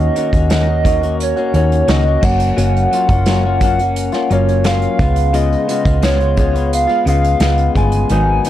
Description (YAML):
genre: indie pop, bedroom pop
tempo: 87 BPM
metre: 4/4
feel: straight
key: unclear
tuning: A4 = 440 Hz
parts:
  - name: warbly nostalgic lead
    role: melody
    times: 0.0-8.5 s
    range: C#5 to G#5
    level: -18 LUFS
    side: right 1 dB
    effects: lush chorus, analog delay, plate reverb
  - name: direct-recorded clean electric guitar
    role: accompaniment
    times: 0.0-8.5 s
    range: G#2 to F#4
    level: -18 LUFS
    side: left 5 dB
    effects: lush chorus, vibrato effect
  - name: hollow-body short-scale fingered electric bass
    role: bass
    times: 0.0-8.4 s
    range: F#1 to D#2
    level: -16 LUFS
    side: right 1 dB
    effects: none
  - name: unplugged drum kit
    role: drums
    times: 0.0-8.5 s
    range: crash cymbal, hi-hat, kick drum, snare drum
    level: -19 LUFS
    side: right 1 dB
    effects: none
room: little or no reverb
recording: dry, gritty hardware recording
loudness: -12 LUFS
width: side -12 dB against mid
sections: 0.0-8.5 A section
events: none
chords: 0.0 D#m7; 2.2 F#maj7; 5.0 C#7